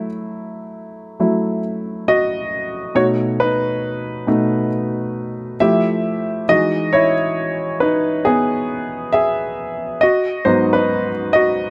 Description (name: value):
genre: R&B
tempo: 68 BPM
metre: 4/4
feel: swing 64% on 16ths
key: unclear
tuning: A4 = 441 Hz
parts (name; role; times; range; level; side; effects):
- clear grand piano; solo; 0.0-11.7 s; G#2 to E5; -19 LUFS; equal; none
room: little or no reverb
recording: none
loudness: -18 LUFS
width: mono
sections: 0.0-11.7 A section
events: grand piano solo 0.0-11.7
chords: 0.0 F#m7; 2.9 B7; 5.6 Fmaj9; 6.5 Emaj9; 10.0 G#m7